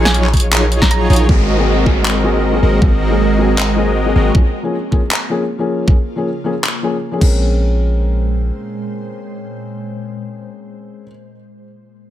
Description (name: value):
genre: future bass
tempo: 157 BPM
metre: 4/4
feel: half-time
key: Bb minor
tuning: A4 = 440 Hz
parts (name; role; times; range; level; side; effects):
- airy dreamy lead; arpeggios; 0.0-1.3 s; Db5; -30 LUFS; right 2 dB; none
- soft round pluck; arpeggios; 0.0-1.3 s; Ab4 to F5; -29 LUFS; right 2 dB; none
- big bright polysynth; riff; 0.0-4.3 s; Gb3 to Eb5; -17 LUFS; left 1 dB; sidechain pumping, digital delay
- warm 808-style bass; bass; 0.0-4.3, 7.2-8.5 s; Ab1 to Bb1; -16 LUFS; equal; sidechain pumping
- thumb-piano-like synth pluck; melody; 0.1-1.0 s; Ab5 to Bb5; -24 LUFS; right 2 dB; chorus, sidechain pumping, digital delay
- pop drum kit; drums; 0.1-7.3 s; crash cymbal, handclaps, hi-hat, snare drum; -18 LUFS; equal; overdrive
- electronic kick drum; drums; 0.3-7.3 s; none; -12 LUFS; equal; overdrive
- felt-muted upright piano; accompaniment; 1.3-11.1 s; F3 to Bb4; -21 LUFS; left 3 dB; sidechain pumping, digital delay
- ethereal airy pad; sustained chords; 3.0-11.1 s; Bb2 to C5; -26 LUFS; right 4 dB; ensemble chorus, built-in reverb, phaser, sidechain pumping
- downlifter; sound effects; 1.3-4.3 s; none; -25 LUFS; right 1 dB; none
room: light reverb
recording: none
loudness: -12 LUFS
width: side -12 dB against mid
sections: 0.0-1.3 A section; 1.3-7.4 B section; 7.4-10.5 C section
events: drop 0.0-1.3; filter sweep on 808-style bass 1.3-7.4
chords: 0.0 Ebm11/Bb; 1.3 Ab9; 4.3 Db6; 7.2 Bbm9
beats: 0.14 0.53 0.91 | 1.29 1.67 2.06 2.44 | 2.82 3.20 3.58 3.96 | 4.35 4.73 5.11 5.49 | 5.88 6.26 6.64 7.02 | 7.41 7.79 8.17 8.55 | 8.93 9.32 9.70 10.08